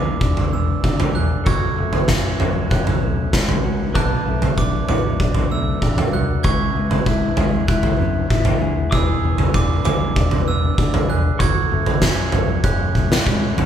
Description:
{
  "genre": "post-rock",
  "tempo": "97 BPM",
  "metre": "4/4",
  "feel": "straight",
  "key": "unclear",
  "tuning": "A4 = 438 Hz",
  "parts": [
    { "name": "pedal steel guitar", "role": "sustained chords", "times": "0.0-13.7 s", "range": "G#4 to D6", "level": "-31 LUFS", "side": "right 2 dB", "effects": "none" },
    { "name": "electric guitar through a small old amp", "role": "arpeggios", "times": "0.0-13.7 s", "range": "B2 to G#4", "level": "-27 LUFS", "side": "left 2 dB", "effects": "none" },
    { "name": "glockenspiel with brass mallets", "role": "arpeggios", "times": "0.0-13.3 s", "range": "D6 to G#6", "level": "-27 LUFS", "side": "right 8 dB", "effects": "none" },
    { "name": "picked electric bass", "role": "bass", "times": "0.0-13.7 s", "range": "E1 to A2", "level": "-23 LUFS", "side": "equal", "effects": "none" },
    { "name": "oversized low-tuned drum kit", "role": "drums", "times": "0.2-13.7 s", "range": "kick drum, snare drum, toms", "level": "-18 LUFS", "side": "equal", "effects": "none" }
  ],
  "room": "light reverb",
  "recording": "band playing live in one room",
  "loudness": "-16 LUFS",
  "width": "side -9 dB against mid",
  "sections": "0.0-13.7 A section",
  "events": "drum fill 12.7-13.7",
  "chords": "0.0 E7; 1.5 F#m; 4.0 Bm7; 6.4 C#m7; 8.9 E7; 11.4 F#m"
}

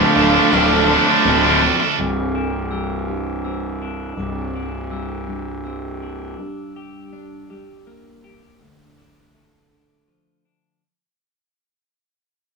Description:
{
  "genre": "post-rock",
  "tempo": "82 BPM",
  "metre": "3/4",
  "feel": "straight",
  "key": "C major",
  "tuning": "A4 = 440 Hz",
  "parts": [
    { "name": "clean lap steel guitar", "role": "melody", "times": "0.0-1.2 s", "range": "F5", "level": "-27 LUFS", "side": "left 1 dB", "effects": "none" },
    { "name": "dark studio string section", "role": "sustained chords", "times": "0.0-2.0 s", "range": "D4 to F5", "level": "-25 LUFS", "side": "right 1 dB", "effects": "none" },
    { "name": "glockenspiel with hard plastic mallets", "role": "arpeggios", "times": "0.0-6.4 s", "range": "D6 to F6", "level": "-30 LUFS", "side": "right 3 dB", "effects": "none" },
    { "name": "twelve-string electric guitar", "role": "arpeggios", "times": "0.0-10.8 s", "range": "C2 to G4", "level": "-26 LUFS", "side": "left 1 dB", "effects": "none" },
    { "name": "cranked stack guitar", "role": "riff", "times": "0.0-2.0 s", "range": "D2 to D4", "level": "-16 LUFS", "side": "right 7 dB", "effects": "overdrive" },
    { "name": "tight distorted guitar", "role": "riff", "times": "0.0-1.8 s", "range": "D2 to D4", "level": "-18 LUFS", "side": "left 7 dB", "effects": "distortion" },
    { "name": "fuzz fingered electric bass", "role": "bass", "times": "0.2-6.3 s", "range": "C1 to D1", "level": "-24 LUFS", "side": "right 1 dB", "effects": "overdrive" }
  ],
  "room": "wet studio reverb, RT60 0.7 s",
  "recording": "band playing live in one room, small room ambience",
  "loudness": "-16 LUFS",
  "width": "side -4 dB against mid",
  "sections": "0.0-2.0 A section; 2.0-10.8 B section",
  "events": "fade-out 2.0-10.8",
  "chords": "0.0 Dm; 2.0 Cadd9; 6.4 Gm; 8.6 Dm"
}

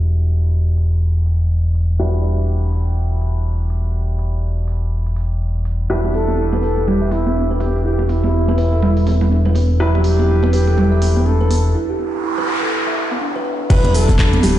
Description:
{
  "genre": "afro house",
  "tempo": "123 BPM",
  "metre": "4/4",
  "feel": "swing 59% on 16ths",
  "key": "E minor",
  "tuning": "A4 = 438 Hz",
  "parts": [
    { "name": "felt-muted upright piano", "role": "stabs", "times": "0.0-14.6 s", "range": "F#3 to B4", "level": "-27 LUFS", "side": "left 1 dB", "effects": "sidechain pumping, low-pass filter, tape echo" },
    { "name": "smooth synth bass", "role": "bass", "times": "0.0-14.6 s", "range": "D1 to E1", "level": "-16 LUFS", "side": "equal", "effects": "sidechain pumping" },
    { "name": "afro-pop drum kit", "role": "drums", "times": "0.3-14.5 s", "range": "crash cymbal, handclaps, hi-hat, shaker", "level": "-28 LUFS", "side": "right 1 dB", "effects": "low-pass filter on hats, low-pass filter on perc, low-pass filter on snare, low-pass filter on toms, low-pass filter on cymbals" },
    { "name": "bright reedy bass bansuri", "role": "melody", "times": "5.9-14.6 s", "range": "E4 to B4", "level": "-23 LUFS", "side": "left 1 dB", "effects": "tape echo" },
    { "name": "kalimba", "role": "arpeggios", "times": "5.9-14.5 s", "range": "B3 to E5", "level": "-22 LUFS", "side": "right 2 dB", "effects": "sidechain pumping, tape echo" },
    { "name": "congas", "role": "percussion", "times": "6.0-14.5 s", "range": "none", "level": "-22 LUFS", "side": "right 3 dB", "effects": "none" },
    { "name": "noise sweep", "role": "sound effects", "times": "12.1-13.7 s", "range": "none", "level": "-22 LUFS", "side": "right 1 dB", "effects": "none" },
    { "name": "electronic kick drum", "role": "drums", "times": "13.7-14.3 s", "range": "none", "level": "-14 LUFS", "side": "equal", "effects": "none" }
  ],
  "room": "light reverb, studio reverb",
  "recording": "played on a big sound system in a bare room, stone room reverb, low-pass filter, nothing above 10.9 kHz",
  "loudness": "-15 LUFS",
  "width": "side -13 dB against mid",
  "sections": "0.0-13.7 A section",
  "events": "filter sweep on drum 0.0-13.7; filter sweep 0.0-13.7; break 11.8-13.7; noise sweep 12.1-13.7",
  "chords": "0.0 Em7"
}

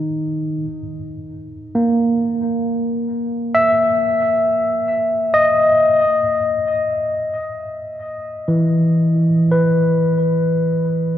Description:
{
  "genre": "ambient",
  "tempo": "free time",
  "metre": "none",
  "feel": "none",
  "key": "unclear",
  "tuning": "A4 = 440 Hz",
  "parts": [
    { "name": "barky tine electric piano", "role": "solo", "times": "0.0-11.2 s", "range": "D#3 to E5", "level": "-16 LUFS", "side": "equal", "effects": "overdrive, diffuse ambient delay" }
  ],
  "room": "wet cathedral reverb, RT60 5.2 s",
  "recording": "worn, warbling old tape, cassette tape, warbly pitch drift",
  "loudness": "-15 LUFS",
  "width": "side -11 dB against mid",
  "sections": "0.6-11.2 A section",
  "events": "none",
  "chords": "0.0 N.C.; 0.6 A#sus4; 6.0 E5"
}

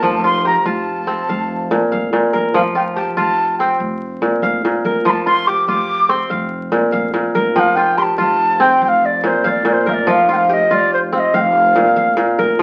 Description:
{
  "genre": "west african traditional",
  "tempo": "96 BPM (dotted quarters)",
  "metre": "12/8",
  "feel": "straight",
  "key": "unclear",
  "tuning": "A4 = 440 Hz",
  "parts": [
    { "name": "wooden flute", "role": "melody", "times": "0.0-12.4 s", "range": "C5 to D6", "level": "-18 LUFS", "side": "equal", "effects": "none" },
    { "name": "kora", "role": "arpeggios", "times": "0.0-12.6 s", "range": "Bb2 to F5", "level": "-19 LUFS", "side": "equal", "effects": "none" },
    { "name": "upright bass", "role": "bass", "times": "0.0-12.6 s", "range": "F1", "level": "-28 LUFS", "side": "equal", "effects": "none" }
  ],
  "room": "wet studio reverb, RT60 0.7 s",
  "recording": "very old 78 rpm record, vinyl crackle",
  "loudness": "-16 LUFS",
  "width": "mono",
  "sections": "0.0-12.6 A section",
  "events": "none",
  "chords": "0.0 F"
}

